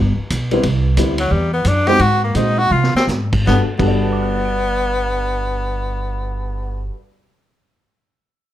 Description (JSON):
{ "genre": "jazz, small-group swing and bop", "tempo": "153-180 BPM", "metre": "4/4", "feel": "swing 63% on 8ths", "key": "G major", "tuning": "A4 = 440 Hz", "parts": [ { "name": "upright bass", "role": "bass", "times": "0.0-6.9 s", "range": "G1 to C3", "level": "-18 LUFS", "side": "equal", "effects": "none" }, { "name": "vintage drum kit", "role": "drums", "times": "0.3-3.9 s", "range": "crash cymbal, hi-hat, kick drum, ride cymbal, snare drum", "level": "-23 LUFS", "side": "right 1 dB", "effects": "none" }, { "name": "warm upright piano", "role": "accompaniment", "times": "0.5-7.5 s", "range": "G2 to D7", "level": "-22 LUFS", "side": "left 1 dB", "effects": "none" }, { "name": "bright tenor saxophone", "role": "melody", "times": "1.2-6.9 s", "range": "F#3 to G4", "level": "-19 LUFS", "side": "left 1 dB", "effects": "none" } ], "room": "light reverb", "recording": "none", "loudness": "-15 LUFS", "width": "side -12 dB against mid", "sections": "0.6-3.5 A section; 3.5-6.6 B section", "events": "slowing down 0.6-3.5; drum fill 2.7-3.1", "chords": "0.0 G; 0.6 Cmaj7; 2.0 Ab7; 3.5 Gmaj9", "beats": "0.31 | 0.64 0.97 1.31 1.65 | 2.00 2.35 2.72 3.09 | 3.48 3.87 4.26 4.65 | 5.05 5.44 5.83 6.23" }